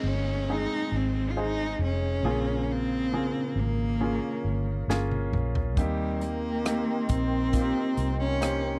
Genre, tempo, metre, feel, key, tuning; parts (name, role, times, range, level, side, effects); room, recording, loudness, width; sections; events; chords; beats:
pop ballad; 68 BPM; 4/4; straight; Ab major; A4 = 442 Hz
rich cello; melody; 0.0-8.8 s; G3 to F4; -32 LUFS; equal
clear baby grand piano; accompaniment; 0.0-8.8 s; Ab2 to C5; -34 LUFS; equal
vintage muted fingered electric bass; bass; 0.0-8.8 s; F1 to Eb2; -32 LUFS; equal
downlifter; sound effects; 0.0-5.8 s; -48 LUFS; equal
natural country drum kit; drums; 4.9-8.6 s; hi-hat, kick drum, rim click, snare drum, toms; -31 LUFS; equal
sweeping resonant pad; sustained chords; 5.8-8.8 s; Bb4 to C6; -40 LUFS; equal; chorus
little or no reverb; dry, close 1970s-style studio recording; -28 LUFS; mono
0.0-8.8 A section
drum fill 4.9-5.8
0.0 Ab; 2.2 Bbm7; 5.8 Eb6
0.47 1.36 | 2.24 3.12 4.00 4.89 | 5.77 6.65 7.53 8.41